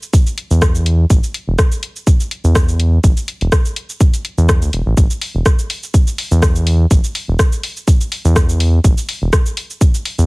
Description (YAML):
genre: minimal techno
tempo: 124 BPM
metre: 4/4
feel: swing 54% on 16ths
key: unclear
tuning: A4 = 440 Hz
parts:
  - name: house drum kit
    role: drums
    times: 0.0-10.3 s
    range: hi-hat, rim click, shaker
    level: -21 LUFS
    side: left 1 dB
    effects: studio reverb
  - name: electronic kick drum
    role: drums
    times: 0.1-9.9 s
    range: none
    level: -12 LUFS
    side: equal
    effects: studio reverb
  - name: round analog bass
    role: bass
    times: 0.5-10.3 s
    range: E1 to E2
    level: -13 LUFS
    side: equal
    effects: sidechain pumping
room: little or no reverb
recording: heavily compressed radio sound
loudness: -12 LUFS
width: side -26 dB against mid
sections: 0.0-10.3 A section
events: none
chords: none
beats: 0.13 0.62 | 1.10 1.59 2.07 2.55 | 3.04 3.52 4.00 4.49 | 4.97 5.46 5.94 6.42 | 6.91 7.39 7.88 8.36 | 8.84 9.33 9.81